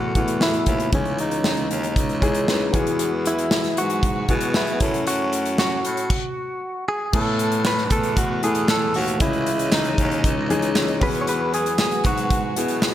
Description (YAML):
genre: piano-driven pop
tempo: 116 BPM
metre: 4/4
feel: straight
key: unclear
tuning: A4 = 440 Hz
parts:
  - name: direct-recorded clean electric guitar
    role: melody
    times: 0.0-12.8 s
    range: C#4 to C#5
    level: -25 LUFS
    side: equal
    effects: slapback echo
  - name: dark upright piano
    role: accompaniment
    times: 0.0-12.9 s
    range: A2 to D#5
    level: -25 LUFS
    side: left 2 dB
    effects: none
  - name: warm studio string section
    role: sustained chords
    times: 0.0-12.9 s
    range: B2 to D#5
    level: -32 LUFS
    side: right 1 dB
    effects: none
  - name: raspy baritone saxophone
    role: bass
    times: 0.0-12.9 s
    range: C#2 to B2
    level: -27 LUFS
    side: equal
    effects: none
  - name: modern studio drum kit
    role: drums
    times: 0.2-12.9 s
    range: crash cymbal, hi-hat, kick drum, snare drum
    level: -23 LUFS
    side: equal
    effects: none
  - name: group handclap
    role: percussion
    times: 7.7-12.9 s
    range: none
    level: -33 LUFS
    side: right 4 dB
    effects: none
room: moderate lush hall reverb, RT60 1.9 s, small room reverb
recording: big arena sound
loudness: -19 LUFS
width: side -12 dB against mid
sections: 0.0-7.1 A section; 7.1-12.9 B section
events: stop 6.1-7.1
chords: 0.0 Asus2; 0.9 C#madd9; 2.7 Eadd9; 4.8 F#m7; 6.1 N.C.; 7.1 Asus2; 9.2 C#madd9; 11.0 Eadd9